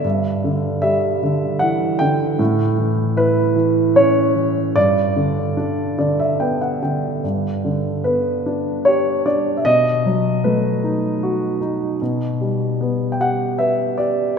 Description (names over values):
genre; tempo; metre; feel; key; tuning
classical, lyrical solo piano; 76 BPM; 3/4; rubato; G lydian; A4 = 438 Hz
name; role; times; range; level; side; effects
dark baby grand piano; solo; 0.0-14.4 s; G2 to G5; -16 LUFS; equal; none
room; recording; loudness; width
wet church reverb, RT60 2.9 s; recorded in a church or concert hall; -16 LUFS; side -6 dB against mid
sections
0.0-7.2 A section; 7.2-14.4 A section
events
grand piano fill 5.6-7.2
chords
0.0 Em7/G; 2.4 Aadd9; 4.8 G; 9.7 B7; 12.0 Em9/B